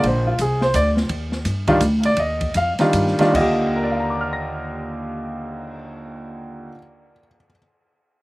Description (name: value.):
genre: jazz piano trio.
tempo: 145-170 BPM.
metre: 3/4.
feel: swing 64% on 8ths.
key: Eb major.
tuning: A4 = 440 Hz.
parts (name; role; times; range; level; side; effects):
clear baby grand piano; melody; 0.0-7.6 s; Eb2 to Bb6; -20 LUFS; equal; slapback echo.
upright bass; bass; 0.0-6.7 s; Bb1 to G2; -24 LUFS; equal; none.
open jazz drum kit; drums; 0.0-5.7 s; crash cymbal, cymbal swell, hi-hat, kick drum, ride cymbal, snare drum; -28 LUFS; equal; none.
room: little or no reverb.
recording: recorded outdoors, with no room sound.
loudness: -18 LUFS.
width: side -20 dB against mid.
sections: 0.0-3.3 A section; 3.3-5.8 B section.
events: slowing down 1.1-3.3.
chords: 0.0 Bb; 1.1 Ebmaj9.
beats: | 0.04 0.39 0.74 | 1.09 1.45 1.81 | 2.17 2.55 2.94 | 3.34 3.76 4.17 | 4.59 5.00 5.42.